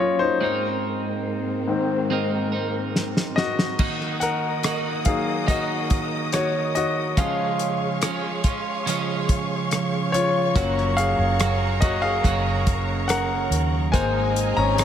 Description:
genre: pop ballad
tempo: 71 BPM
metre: 4/4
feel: straight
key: unclear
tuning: A4 = 440 Hz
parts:
  - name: bright grand piano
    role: accompaniment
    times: 0.0-14.8 s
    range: Gb2 to Bb5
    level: -24 LUFS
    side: left 3 dB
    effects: slapback echo
  - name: warm symphonic string section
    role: sustained chords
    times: 0.0-14.8 s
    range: Gb2 to Eb6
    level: -30 LUFS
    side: equal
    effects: none
  - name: twelve-string electric guitar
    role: arpeggios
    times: 0.0-14.8 s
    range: Gb2 to Bb4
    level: -28 LUFS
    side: right 5 dB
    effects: wide subtle chorus, slapback echo
  - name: damped 70s drum kit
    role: drums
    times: 3.0-14.8 s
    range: crash cymbal, hi-hat, kick drum, rim click, snare drum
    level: -24 LUFS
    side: equal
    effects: none
  - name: vintage muted fingered electric bass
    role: bass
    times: 10.6-14.8 s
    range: Gb1 to Eb2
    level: -25 LUFS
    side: equal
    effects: none
room: moderate lush hall reverb, RT60 2.8 s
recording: big arena sound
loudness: -20 LUFS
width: side -9 dB against mid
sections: 0.0-3.8 A section; 3.8-14.8 B section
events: grand piano solo 0.0-3.8, 3.8-14.8; drum fill 2.9-3.8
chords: 0.4 Abadd9; 3.8 Ebm; 7.2 Db; 10.6 Gb; 13.9 Abadd9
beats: | 0.41 1.26 2.10 2.95 | 3.79 4.64 5.48 6.33 | 7.17 8.02 8.86 9.71 | 10.55 11.40 12.24 13.09 | 13.93 14.78

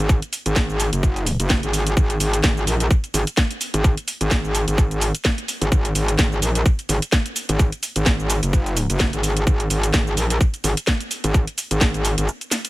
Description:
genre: bass house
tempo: 128 BPM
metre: 4/4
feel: swing 56% on 16ths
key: unclear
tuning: A4 = 439 Hz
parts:
  - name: metallic wobble bass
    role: bass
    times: 0.0-12.3 s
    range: F#1 to A#1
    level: -20 LUFS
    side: equal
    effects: distortion, chorus, tube saturation, sidechain pumping
  - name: electronic kick drum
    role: drums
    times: 0.1-11.9 s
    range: none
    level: -18 LUFS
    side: equal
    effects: none
  - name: garage drum kit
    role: drums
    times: 0.1-12.7 s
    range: hi-hat, shaker, snare drum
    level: -23 LUFS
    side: equal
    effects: none
room: little or no reverb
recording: none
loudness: -18 LUFS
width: side -18 dB against mid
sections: 0.0-12.7 A section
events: break 12.3-12.7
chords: none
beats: | 0.09 0.56 1.03 1.50 | 1.97 2.44 2.90 3.37 | 3.84 4.31 4.78 5.25 | 5.72 6.19 6.66 7.12 | 7.59 8.06 8.53 9.00 | 9.47 9.94 10.40 10.87 | 11.34 11.81 12.28

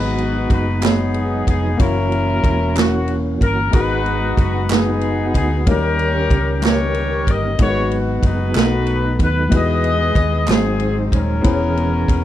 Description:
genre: slow gospel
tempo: 62 BPM (dotted quarters)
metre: 6/8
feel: straight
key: G# minor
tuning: A4 = 441 Hz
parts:
  - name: warm horn section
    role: melody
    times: 0.0-12.2 s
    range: B3 to D#5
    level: -22 LUFS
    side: left 3 dB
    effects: none
  - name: dark grand piano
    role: accompaniment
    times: 0.0-12.2 s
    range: G#2 to D#5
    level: -22 LUFS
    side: left 4 dB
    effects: none
  - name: mellow tonewheel organ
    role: sustained chords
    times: 0.0-12.2 s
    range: D#3 to D#5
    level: -26 LUFS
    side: right 6 dB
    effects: fast rotary speaker, chorus vibrato
  - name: hollow-body short-scale fingered electric bass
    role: bass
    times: 0.0-12.2 s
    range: D#1 to E2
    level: -21 LUFS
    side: equal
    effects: none
  - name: swinging big-band drum kit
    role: drums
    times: 0.2-12.2 s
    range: kick drum, ride cymbal, snare drum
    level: -18 LUFS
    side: right 1 dB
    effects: none
  - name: group handclap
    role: percussion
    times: 0.8-10.8 s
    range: none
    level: -28 LUFS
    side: right 7 dB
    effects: none
room: little or no reverb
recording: none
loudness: -15 LUFS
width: side -12 dB against mid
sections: 0.0-12.2 A section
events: none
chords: 0.0 G#m7; 1.8 F#7; 3.7 G#m7; 5.7 D#7; 7.6 G#m7; 8.6 B7; 9.5 Emaj7; 10.5 G#7; 11.4 C#m7/E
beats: 0.84 | 1.80 2.77 | 3.74 4.70 | 5.67 6.63 | 7.59 8.56 | 9.52 10.48 | 11.45

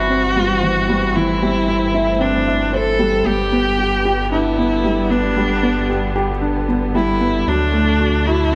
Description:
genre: electronica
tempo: 114 BPM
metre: 4/4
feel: straight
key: G major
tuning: A4 = 440 Hz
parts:
  - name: rich viola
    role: melody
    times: 0.0-8.5 s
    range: D4 to A4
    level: -21 LUFS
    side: equal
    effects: none
  - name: muted studio string section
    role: sustained chords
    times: 0.0-8.6 s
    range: D3 to C4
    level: -28 LUFS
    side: equal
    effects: none
  - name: felt-muted upright piano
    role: riff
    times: 0.0-8.6 s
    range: E3 to E5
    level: -22 LUFS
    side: equal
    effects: delay
  - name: warm sub bass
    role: bass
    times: 0.0-8.6 s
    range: G1 to D2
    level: -26 LUFS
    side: equal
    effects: tube saturation
room: moderate concert hall reverb, RT60 2.1 s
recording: none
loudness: -17 LUFS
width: mono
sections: 0.0-8.6 A section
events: none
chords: 0.0 C/G; 3.3 G; 7.5 D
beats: 0.10 0.63 | 1.15 1.68 2.21 2.73 | 3.26 3.79 4.31 4.84 | 5.36 5.89 6.42 6.94 | 7.47 8.00 8.52

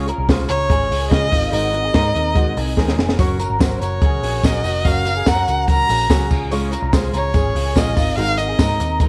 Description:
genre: jangly indie pop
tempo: 145 BPM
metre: 4/4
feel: straight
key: Db major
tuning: A4 = 440 Hz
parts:
  - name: fingerpicked steel-string acoustic guitar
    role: accompaniment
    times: 0.0-9.1 s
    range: Db3 to Bb4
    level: -27 LUFS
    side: equal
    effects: none
  - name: electric guitar through a small old amp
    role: arpeggios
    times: 0.0-9.1 s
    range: F4 to Db5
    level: -29 LUFS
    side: equal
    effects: ensemble chorus, slapback echo
  - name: vintage muted picked electric bass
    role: bass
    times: 0.0-9.1 s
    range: F1 to Db3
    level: -25 LUFS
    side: equal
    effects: none
  - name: compact cocktail drum kit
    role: drums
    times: 0.1-9.1 s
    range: crash cymbal, hi-hat, kick drum, snare drum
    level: -21 LUFS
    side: equal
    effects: none
  - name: warm violin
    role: melody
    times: 0.5-9.0 s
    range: Db5 to Bb5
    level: -23 LUFS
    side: equal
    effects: slapback echo
  - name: tambourine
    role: percussion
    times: 3.2-9.1 s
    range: none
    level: -40 LUFS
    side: equal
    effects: none
room: light reverb, studio ambience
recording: none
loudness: -18 LUFS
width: mono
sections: 0.0-9.1 A section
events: drum fill 2.8-3.2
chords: 0.0 Db; 1.3 Abadd9; 3.2 Gb; 6.3 Db; 8.0 Abadd9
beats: 0.29 0.70 1.12 | 1.53 1.95 2.36 2.78 | 3.19 3.61 4.02 4.44 | 4.85 5.27 5.68 6.10 | 6.51 6.93 7.34 7.76 | 8.17 8.59 9.00

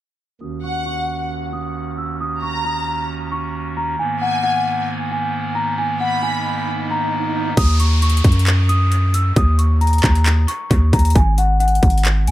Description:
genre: hip hop, trap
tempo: 134 BPM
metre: 4/4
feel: half-time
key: Eb minor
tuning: A4 = 440 Hz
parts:
  - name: large celesta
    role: melody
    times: 0.4-12.3 s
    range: Gb5 to Fb6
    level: -22 LUFS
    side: left 1 dB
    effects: low-pass filter, dub echo
  - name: pipe organ, clarinet reed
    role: sustained chords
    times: 0.4-7.5 s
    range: Eb2 to Gb4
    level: -25 LUFS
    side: right 2 dB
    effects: low-pass filter
  - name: rich studio violin section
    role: second line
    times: 0.6-6.6 s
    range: Gb5 to Cb6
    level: -28 LUFS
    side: right 1 dB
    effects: dub echo
  - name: swell and downlifter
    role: sound effects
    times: 5.8-11.2 s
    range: none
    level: -29 LUFS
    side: right 2 dB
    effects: none
  - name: long sustained 808-style bass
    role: bass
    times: 7.6-12.3 s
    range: Ab1 to Ab2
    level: -15 LUFS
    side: equal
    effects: none
  - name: trap drum kit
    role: drums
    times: 7.6-12.3 s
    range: crash cymbal, handclaps, hi-hat, kick drum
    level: -18 LUFS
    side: equal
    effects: overdrive
room: little or no reverb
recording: echo-heavy mix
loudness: -16 LUFS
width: side -15 dB against mid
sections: 0.4-7.6 A section; 7.6-12.3 B section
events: filter sweep 0.4-7.6; swell 5.8-7.6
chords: 0.4 Ebm7; 4.0 Abmadd9; 7.6 Ebm7; 11.2 N.C.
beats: | 0.41 0.86 1.30 1.75 | 2.20 2.65 3.10 3.54 | 3.99 4.44 4.89 5.33 | 5.78 6.23 6.68 7.13 | 7.57 8.02 8.47 8.92 | 9.36 9.81 10.26 10.71 | 11.15 11.60 12.05

